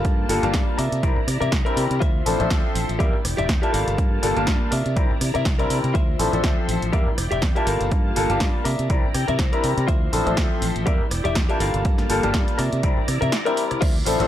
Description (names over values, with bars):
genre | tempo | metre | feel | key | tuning
filtered disco house | 122 BPM | 4/4 | swing 56% on 16ths | unclear | A4 = 440 Hz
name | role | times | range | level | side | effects
bright grand piano | accompaniment | 0.0-14.3 s | F3 to A5 | -25 LUFS | left 2 dB | phaser, vintage 12-bit sampler grit, sidechain pumping, low-pass filter
string machine, full ensemble | sustained chords | 0.0-14.3 s | F3 to C6 | -30 LUFS | equal | ensemble chorus, sidechain pumping, low-pass filter
direct-recorded clean electric guitar | riff | 0.0-14.3 s | F4 to G5 | -28 LUFS | left 3 dB | phaser, sidechain pumping, low-pass filter
fingered electric bass | bass | 0.0-14.3 s | E1 to C3 | -26 LUFS | equal | tube saturation, sidechain pumping, low-pass filter
electronic kick drum | drums | 0.0-13.9 s | none | -22 LUFS | equal | overdrive
punchy analog drum machine | drums | 0.0-14.3 s | crash cymbal, hi-hat, rim click, snare drum | -29 LUFS | right 1 dB | overdrive, sidechain pumping on hats, sidechain pumping on cymbals
tambourine and congas | percussion | 0.1-14.3 s | none | -34 LUFS | left 1 dB | none
room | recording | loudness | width
little or no reverb | dry, gritty hardware recording | -19 LUFS | side -12 dB against mid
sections
0.0-13.8 A section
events
clean electric guitar fill 8.9-9.9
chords
0.0 Gm9; 0.8 C9; 2.0 Dm9; 3.0 Em7b5; 3.7 Gm9; 4.7 C9; 6.0 Dm9; 6.9 Em7b5; 7.7 Gm9; 8.7 C9; 9.9 Dm9; 10.9 Em7b5; 11.6 Gm9; 12.6 C9